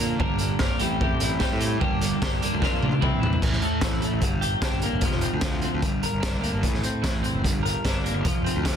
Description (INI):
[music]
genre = indie rock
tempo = 149 BPM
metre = 4/4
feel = straight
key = G dorian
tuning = A4 = 438 Hz
[part]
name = twelve-string electric guitar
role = riff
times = 0.0-8.8 s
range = G2 to Bb4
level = -26 LUFS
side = equal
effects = double-tracked left and right
[part]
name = fuzz picked electric bass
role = bass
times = 0.0-8.8 s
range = E1 to Bb2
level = -29 LUFS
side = equal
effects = overdrive
[part]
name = raw garage drum kit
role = drums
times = 0.2-8.7 s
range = crash cymbal, hi-hat, kick drum, snare drum, toms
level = -25 LUFS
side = equal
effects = none
[sound]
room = studio reverb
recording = dense, heavily limited modern master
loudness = -22 LUFS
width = side -8 dB against mid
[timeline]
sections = 0.0-3.4 A section; 3.4-8.8 B section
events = drum fill 2.6-3.4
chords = 0.2 Gm; 0.8 Am7; 1.8 Gm; 2.6 Bb; 3.0 C; 3.4 A5; 4.2 Gm; 5.0 F5; 5.8 Gm; 6.6 Am; 7.4 Gm; 8.2 F5